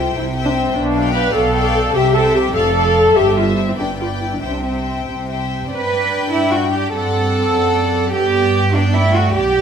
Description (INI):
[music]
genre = quick classical-period movement for string orchestra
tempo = 99 BPM (dotted quarters)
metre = 6/8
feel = rubato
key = C major, G major from 5.7 s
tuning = A4 = 437 Hz
[part]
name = warm symphonic violin section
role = melody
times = 0.0-9.6 s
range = E5 to G5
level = -25 LUFS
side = left 8 dB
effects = none
[part]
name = warm symphonic violin section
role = second line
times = 0.0-9.6 s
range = A4 to F5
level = -26 LUFS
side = left 5 dB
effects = none
[part]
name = dark symphonic viola section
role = accompaniment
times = 0.0-9.6 s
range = G3 to B4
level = -18 LUFS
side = left 1 dB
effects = none
[part]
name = dark symphonic double bass section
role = bass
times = 0.0-9.6 s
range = F1 to G2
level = -22 LUFS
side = right 3 dB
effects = none
[part]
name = rich symphonic cello section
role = bass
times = 0.0-9.6 s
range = F2 to B4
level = -19 LUFS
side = right 4 dB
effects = none
[sound]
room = wet recital hall reverb, RT60 1.7 s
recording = none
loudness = -14 LUFS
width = side -7 dB against mid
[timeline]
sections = 0.0-5.7 A section; 5.7-9.6 B section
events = none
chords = 0.0 C; 0.8 G7/B; 2.0 C; 2.6 Dm/F; 3.2 C/G; 3.8 G; 4.4 C; 5.7 G; 6.9 D7/G; 8.1 G